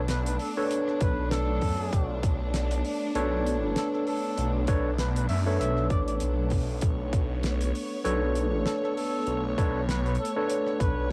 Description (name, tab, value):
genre	glitch hop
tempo	98 BPM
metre	4/4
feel	swing 57% on 16ths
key	B minor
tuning	A4 = 439 Hz
part	warm studio string section	sustained chords	0.0-11.1 s	A3 to C#5	-37 LUFS	equal	sidechain pumping, cassette tape
part	phased detuned saw bass	bass	0.0-11.1 s	B1 to F#2	-31 LUFS	equal	phaser, overdrive
part	breathy trumpet	melody	0.1-11.1 s	A4 to E5	-38 LUFS	equal	cassette tape, tape echo
part	damped 70s drum kit	drums	0.1-10.9 s	hi-hat, rim click, snare drum	-39 LUFS	equal	cassette tape
part	overdriven tine electric piano	stabs	0.6-11.1 s	D4 to C#5	-33 LUFS	equal	sidechain pumping, cassette tape, tape echo
part	electronic kick drum	drums	1.0-10.9 s	none	-28 LUFS	equal	cassette tape
room	light reverb, small room ambience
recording	home recording on cassette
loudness	-28 LUFS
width	mono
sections	0.0-11.1 A section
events	none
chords	0.0 Bm9